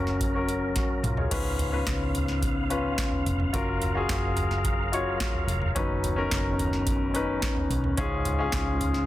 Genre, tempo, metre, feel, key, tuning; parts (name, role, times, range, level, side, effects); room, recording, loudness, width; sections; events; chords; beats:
piano-driven pop; 108 BPM; 4/4; straight; F# major; A4 = 439 Hz
warm grand piano; accompaniment; 0.0-9.1 s; G#2 to C#5; -28 LUFS; left 3 dB
tonewheel organ; sustained chords; 0.0-9.1 s; C#3 to E#5; -35 LUFS; right 2 dB; chorus vibrato, fast rotary speaker
vintage muted fingered electric bass; bass; 0.0-9.1 s; E#1 to C#2; -31 LUFS; equal
booming analog drum machine; drums; 0.1-9.0 s; crash cymbal, handclaps, hi-hat, kick drum, snare drum, toms; -30 LUFS; right 1 dB
light reverb; dense, heavily limited modern master; -24 LUFS; side -14 dB against mid
0.0-1.3 A section; 1.3-9.1 B section
drum fill 0.8-1.3
0.0 F#; 1.3 C#7; 3.5 F#maj7; 5.8 Badd9/F#; 8.0 C#
0.20 0.76 | 1.32 1.87 2.43 2.98 | 3.54 4.09 4.65 5.20 | 5.76 6.31 6.87 7.42 | 7.98 8.53